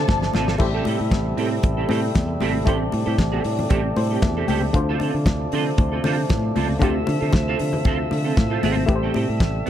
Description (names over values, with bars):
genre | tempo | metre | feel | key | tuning
disco | 116 BPM | 4/4 | straight | A minor | A4 = 439 Hz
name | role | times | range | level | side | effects
warm studio string section | second line | 0.0-0.6 s | A4 to A5 | -28 LUFS | left 2 dB | none
muted clav | accompaniment | 0.0-9.7 s | D3 to G5 | -27 LUFS | left 4 dB | none
overdriven tonewheel organ | sustained chords | 0.0-9.7 s | C3 to E5 | -26 LUFS | left 1 dB | wide subtle chorus
fingered electric bass | bass | 0.0-9.7 s | G1 to D3 | -24 LUFS | equal | none
semi-hollow electric guitar | accompaniment | 0.1-9.7 s | C4 to A4 | -27 LUFS | right 8 dB | ensemble chorus
damped 70s drum kit | drums | 0.1-9.7 s | crash cymbal, hi-hat, kick drum, snare drum | -23 LUFS | equal | none
congas | percussion | 0.1-9.5 s | none | -29 LUFS | left 5 dB | none
room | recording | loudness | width
small room ambience | none | -18 LUFS | side -10 dB against mid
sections
0.6-9.7 A section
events
drum fill 0.0-0.6; clav fill 3.7-4.7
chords
0.0 Dm7; 0.6 Am7; 4.7 Dm7; 8.9 Am7